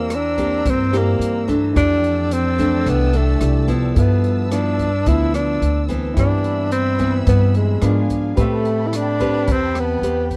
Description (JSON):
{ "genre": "bossa nova", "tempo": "109 BPM", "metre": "4/4", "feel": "straight", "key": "C major", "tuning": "A4 = 439 Hz", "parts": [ { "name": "breathy tenor saxophone", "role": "melody", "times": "0.0-10.3 s", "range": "Ab3 to E4", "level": "-23 LUFS", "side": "equal", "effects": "none" }, { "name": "nylon-string guitar", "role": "accompaniment", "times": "0.0-10.4 s", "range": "F2 to B4", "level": "-25 LUFS", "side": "equal", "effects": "none" }, { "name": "warm baby grand piano", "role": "accompaniment", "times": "0.0-10.4 s", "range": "E4 to E5", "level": "-35 LUFS", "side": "equal", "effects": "none" }, { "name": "dark symphonic string section", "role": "sustained chords", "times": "0.0-10.4 s", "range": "G#4 to E6", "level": "-36 LUFS", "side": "equal", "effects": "none" }, { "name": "upright bass", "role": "bass", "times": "0.0-10.4 s", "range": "C2 to A2", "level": "-22 LUFS", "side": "equal", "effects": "none" }, { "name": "open jazz drum kit", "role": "drums", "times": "0.1-10.4 s", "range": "hi-hat, kick drum, rim click", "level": "-28 LUFS", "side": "equal", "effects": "none" } ], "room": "little or no reverb", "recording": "dry, close 1970s-style studio recording", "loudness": "-18 LUFS", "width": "mono", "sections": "0.0-10.4 A section", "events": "none", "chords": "0.0 C7/E; 1.8 Fmaj13; 4.0 G13; 6.2 Cmaj7/G; 7.8 G#dim7; 8.4 Am9", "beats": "0.10 0.66 1.21 | 1.76 2.31 2.86 3.41 | 3.96 4.51 5.07 5.62 | 6.17 6.72 7.27 7.83 | 8.38 8.93 9.48 10.03" }